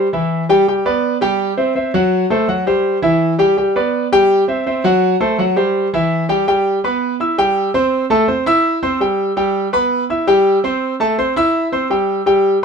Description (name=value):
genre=latin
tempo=166 BPM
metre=4/4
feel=straight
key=unclear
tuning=A4 = 440 Hz
part: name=clear concert grand piano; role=solo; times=0.0-12.6 s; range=E3 to E6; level=-13 LUFS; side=equal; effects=none
room=light reverb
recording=minimal, uncompressed stereo recording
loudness=-13 LUFS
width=side -6 dB against mid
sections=0.0-6.5 A section; 6.5-12.6 B section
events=none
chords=0.0 C (rootless); 0.7 G; 1.4 C; 2.1 F#dim; 2.8 C; 3.6 G; 4.3 C; 5.0 F#dim; 5.8 C; 6.5 G; 7.2 C/G; 7.9 Am; 8.6 C; 9.4 G; 10.1 C/G; 10.8 Am; 11.5 C